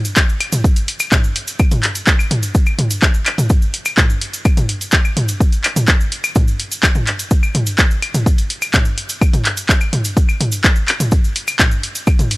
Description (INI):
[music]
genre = techno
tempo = 126 BPM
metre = 4/4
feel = straight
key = none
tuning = none
[part]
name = punchy analog drum machine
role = drums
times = 0.0-12.4 s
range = claves, handclaps, hi-hat, toms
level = -17 LUFS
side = equal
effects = sidechain pumping on hats, sidechain pumping on perc, sidechain pumping on toms
[part]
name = cabasa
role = percussion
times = 0.1-12.3 s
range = none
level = -27 LUFS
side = right 1 dB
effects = none
[part]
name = electronic kick drum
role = drums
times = 0.2-12.2 s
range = none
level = -14 LUFS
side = equal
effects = overdrive
[sound]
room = little or no reverb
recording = dry, gritty hardware recording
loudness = -13 LUFS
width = side -22 dB against mid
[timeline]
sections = 0.0-12.4 A section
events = none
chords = none